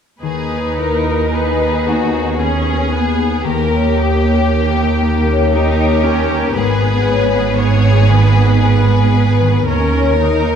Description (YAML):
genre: classical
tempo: 57 BPM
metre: 3/4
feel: uneven beats, rubato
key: G# minor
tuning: A4 = 440 Hz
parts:
  - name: rich studio violin section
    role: melody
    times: 0.2-10.6 s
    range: G4 to C#5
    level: -22 LUFS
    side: left 6 dB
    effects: none
  - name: rich studio violin section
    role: second line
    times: 0.2-10.6 s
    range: F#4 to B4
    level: -21 LUFS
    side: left 4 dB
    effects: none
  - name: rich studio viola section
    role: accompaniment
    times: 0.2-10.6 s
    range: A#3 to D#4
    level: -20 LUFS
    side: right 1 dB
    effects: none
  - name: concert harp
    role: arpeggios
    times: 0.2-10.6 s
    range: G#2 to B4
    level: -20 LUFS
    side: left 8 dB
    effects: none
  - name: rich studio cello section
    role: bass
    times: 0.2-10.6 s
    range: D#2 to G#2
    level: -18 LUFS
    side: right 3 dB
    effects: none
  - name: rich studio double bass section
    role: bass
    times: 0.2-10.6 s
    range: G#1 to D#2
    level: -17 LUFS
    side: right 4 dB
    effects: none
room: wet scoring stage reverb, RT60 1.4 s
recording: none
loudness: -12 LUFS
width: side -8 dB against mid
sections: 0.2-10.6 A section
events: none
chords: 0.2 G#m/D#; 3.5 D#7; 6.6 G#m; 9.7 D#7(no3)